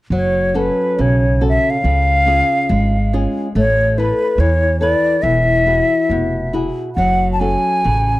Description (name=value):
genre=fado-style ballad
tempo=70 BPM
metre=2/4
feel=rubato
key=F# minor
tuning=A4 = 437 Hz
part: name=flamenco guitar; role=accompaniment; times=0.1-8.2 s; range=B2 to B4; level=-20 LUFS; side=left 1 dB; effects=none
part: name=upright bass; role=bass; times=0.1-8.2 s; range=E1 to E2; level=-18 LUFS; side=right 1 dB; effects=none
part: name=jazz flute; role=melody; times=0.2-8.2 s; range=B4 to A5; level=-16 LUFS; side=left 1 dB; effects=none
room=small room ambience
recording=dry, close 1970s-style studio recording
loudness=-13 LUFS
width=side -17 dB against mid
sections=0.1-8.2 A section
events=none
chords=0.1 F#m; 1.9 C#; 3.5 Asus2; 5.2 Eadd9; 7.0 F#m